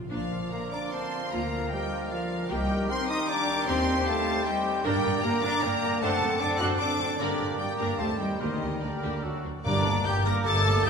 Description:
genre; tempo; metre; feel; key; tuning
classical, dramatic, fast romantic movement for symphony orchestra; 151 BPM; 3/4; rubato; Bb major, G minor from 4.9 s; A4 = 440 Hz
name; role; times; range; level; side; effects
rich symphonic viola section; accompaniment; 0.0-10.9 s; F#3 to C5; -35 LUFS; equal; none
timpani; percussion; 0.0-0.1, 8.4-10.2 s; G2 to D3; -36 LUFS; equal; none
rich symphonic violin section; melody; 0.1-10.9 s; D5 to Bb6; -34 LUFS; left 2 dB; none
dark clarinet; second line; 0.1-10.9 s; D4 to F#5; -36 LUFS; equal; none
mellow cor anglais; second line; 0.1-10.9 s; A4 to Eb5; -38 LUFS; right 4 dB; none
rich studio violin section; second line; 0.1-10.9 s; D5 to F#6; -37 LUFS; left 3 dB; none
silver concert flute; second line; 0.1-10.9 s; Bb4 to Eb6; -35 LUFS; left 2 dB; none
clear bassoon; accompaniment; 0.1-10.9 s; Eb3 to C4; -37 LUFS; right 1 dB; none
mellow French horn section; sustained chords; 0.1-10.9 s; D3 to F#4; -36 LUFS; left 3 dB; none
warm trombone section; sustained chords; 0.1-10.9 s; D3 to D4; -38 LUFS; right 3 dB; none
warm trumpet section; stabs; 0.1-10.9 s; D4 to Bb4; -34 LUFS; left 2 dB; none
clear symphonic double bass section; bass; 0.1-10.9 s; G1 to G2; -35 LUFS; right 2 dB; none
rich symphonic cello section; bass; 0.1-10.9 s; Eb2 to F#4; -33 LUFS; right 1 dB; none
room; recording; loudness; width
wet concert hall reverb, RT60 2.3 s; minimal, uncompressed stereo recording, lossy compression artefacts; -25 LUFS; side -6 dB against mid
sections
0.1-9.7 A section; 9.7-10.9 B section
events
none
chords
0.1 Bb; 1.3 Bb/D; 2.5 Cm7; 3.7 Cm/Eb; 4.9 Gm; 6.0 D7/F#; 7.2 Gm; 8.0 Cm/Eb; 8.4 Gm/D; 9.2 D; 9.7 Gm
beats
| 0.12 0.52 0.92 | 1.32 1.72 2.11 | 2.51 2.90 3.29 | 3.69 4.08 4.47 | 4.85 5.24 5.63 | 6.02 6.41 6.80 | 7.20 7.59 8.00 | 8.41 8.83 9.25 | 9.66 10.06 10.46 | 10.86

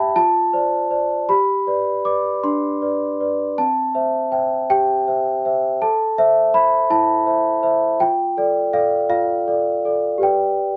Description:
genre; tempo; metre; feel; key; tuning
classical, lullaby for celesta; 54 BPM (dotted quarters); 6/8; straight; C major; A4 = 440 Hz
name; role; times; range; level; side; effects
large celesta; solo; 0.0-10.8 s; C4 to D6; -19 LUFS; equal; none
room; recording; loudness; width
little or no reverb; close, detailed microphones; -19 LUFS; mono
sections
0.0-10.8 A section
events
none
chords
0.2 Dm7/F; 1.3 G; 3.6 C; 5.8 Am; 8.0 Dm/F; 10.2 G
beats
0.16 | 1.28 2.43 | 3.57 4.68 | 5.80 6.90 | 8.00 9.11 | 10.23

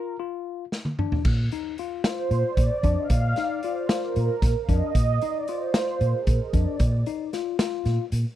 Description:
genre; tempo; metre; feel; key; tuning
progressive instrumental, band music in an uneven meter; 227 BPM (eighths); 7/8; straight; Bb major; A4 = 440 Hz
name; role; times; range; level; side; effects
tine electric piano; arpeggios; 0.0-8.0 s; D4 to F4; -30 LUFS; left 14 dB; phaser
raw garage drum kit; drums; 0.7-8.2 s; crash cymbal, hi-hat, kick drum, snare drum, toms; -25 LUFS; equal; none
fingered electric bass; bass; 1.2-8.2 s; F2 to Bb2; -23 LUFS; equal; none
sweeping resonant pad; accompaniment; 2.1-6.8 s; Ab4 to F5; -28 LUFS; right 5 dB; chorus
room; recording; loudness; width
little or no reverb; dry, close 1970s-style studio recording; -22 LUFS; side -12 dB against mid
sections
0.0-1.3 A section; 1.3-8.4 B section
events
break 0.0-1.3; drum fill 0.7-1.3; analog synth pad solo 1.3-8.4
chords
0.0 Bb5; 1.3 Bbsus4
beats
0.20 0.47 0.73 1.00 | 1.26 1.52 1.79 2.06 2.32 2.58 2.85 | 3.11 3.38 3.64 3.90 4.17 4.43 4.70 | 4.96 5.23 5.49 5.75 6.02 6.28 6.55 | 6.81 7.07 7.34 7.60 7.87 8.13

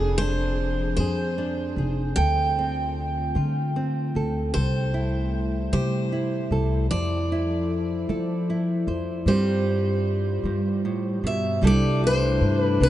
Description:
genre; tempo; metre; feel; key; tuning
acoustic folk-pop ballad; 51 BPM (dotted quarters); 6/8; straight; C major; A4 = 440 Hz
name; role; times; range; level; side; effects
picked steel-string acoustic guitar; melody; 0.0-12.9 s; Ab4 to G5; -28 LUFS; equal; none
nylon-string guitar; accompaniment; 0.0-12.9 s; G2 to C5; -28 LUFS; right 3 dB; none
dark analog pad; sustained chords; 0.0-12.9 s; C3 to C5; -31 LUFS; left 2 dB; chorus
upright bass; bass; 0.0-12.9 s; F1 to G3; -25 LUFS; equal; none
warm clarinet; second line; 11.6-12.9 s; D4; -29 LUFS; left 6 dB; none
room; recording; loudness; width
moderate huge ambient reverb, RT60 8.7 s; in a vast, echoing space, nothing above 10.5 kHz; -22 LUFS; side -13 dB against mid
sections
0.0-11.6 A section; 11.6-12.9 B section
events
none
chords
0.0 Fm6; 2.2 Dm7; 4.5 C6; 6.9 Fmaj7; 9.3 G7sus4; 11.6 C69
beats
0.98 | 2.17 3.35 | 4.54 5.72 | 6.90 8.07 | 9.25 10.43 | 11.62 12.80

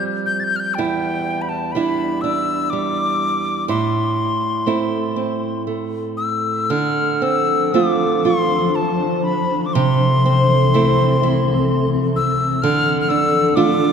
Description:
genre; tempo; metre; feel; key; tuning
celtic folk, Celtic slow air; 41 BPM (dotted quarters); 6/8; uneven beats, rubato; A minor; A4 = 441 Hz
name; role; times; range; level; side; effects
mid whistle; melody; 0.0-13.9 s; G5 to A6; -21 LUFS; left 4 dB; tape echo
nylon-string guitar; accompaniment; 0.0-13.9 s; E2 to G4; -18 LUFS; right 2 dB; none
granular cloud pad; sustained chords; 7.4-13.9 s; C2 to C5; -22 LUFS; left 2 dB; built-in reverb
room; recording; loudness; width
wet church reverb, RT60 3.5 s; none; -16 LUFS; side -7 dB against mid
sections
0.0-6.7 A section; 6.7-13.9 B section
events
none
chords
0.0 Fsus2; 0.8 Em7; 3.7 Am; 6.7 Dm7; 9.7 Am/C; 12.6 Dm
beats
| 0.78 2.23 | 3.68 5.16 | 6.70 8.24 | 9.74 11.21 | 12.63

